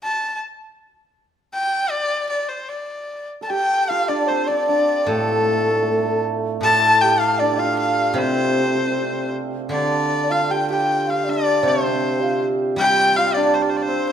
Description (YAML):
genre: chinese traditional, Chinese chamber ensemble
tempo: 78 BPM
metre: 2/4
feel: rubato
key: D yu mode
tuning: A4 = 440 Hz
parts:
  - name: rich erhu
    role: melody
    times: 0.0-14.1 s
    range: A4 to A5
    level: -21 LUFS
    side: left 1 dB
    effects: none
  - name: hammered dulcimer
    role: second line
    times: 3.4-14.1 s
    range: A3 to A4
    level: -23 LUFS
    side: right 7 dB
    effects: none
  - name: mellow xiao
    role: second line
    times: 3.4-14.1 s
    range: A4 to A5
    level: -23 LUFS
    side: left 4 dB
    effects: none
  - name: steel-string zither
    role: accompaniment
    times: 5.1-14.1 s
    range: A2 to G3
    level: -25 LUFS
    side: equal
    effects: none
room: moderate recital hall reverb, RT60 1.4 s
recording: minimal, uncompressed stereo recording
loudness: -17 LUFS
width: side -8 dB against mid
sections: 0.0-3.5 A section; 3.5-14.1 B section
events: none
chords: none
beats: | 0.40 1.16 | 1.92 2.70 | 3.50 4.29 | 5.08 5.85 | 6.62 7.39 | 8.14 8.91 | 9.71 10.49 | 11.26 12.03 | 12.79 13.55